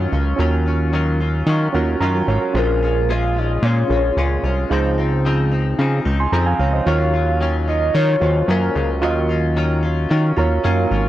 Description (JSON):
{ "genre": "indie pop", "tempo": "111 BPM", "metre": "4/4", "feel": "straight", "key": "unclear", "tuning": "A4 = 440 Hz", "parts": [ { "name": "soft octave-layered synth lead", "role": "melody", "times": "0.0-11.1 s", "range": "Bb4 to F5", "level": "-24 LUFS", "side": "left 2 dB", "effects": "phaser, lush chorus, tape echo" }, { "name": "direct-recorded clean electric guitar", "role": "accompaniment", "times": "0.0-11.1 s", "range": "Bb2 to F4", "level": "-24 LUFS", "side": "left 3 dB", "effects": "lush chorus, warbly pitch drift" }, { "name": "reed electric piano", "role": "accompaniment", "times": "0.0-11.1 s", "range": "Db4 to C6", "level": "-23 LUFS", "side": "right 5 dB", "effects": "overdrive, cassette tape" }, { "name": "fat analog bass", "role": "bass", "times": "0.0-11.1 s", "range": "Ab1 to Eb3", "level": "-18 LUFS", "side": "equal", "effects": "none" } ], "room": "little or no reverb", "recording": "dry, gritty hardware recording", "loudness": "-16 LUFS", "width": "side -13 dB against mid", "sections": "0.0-11.1 A section", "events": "reed electric piano fill 1.5-2.6, 10.1-11.1", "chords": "0.0 Ebm9; 2.6 Bbm7; 4.7 Dbmaj9; 6.9 Ebm9" }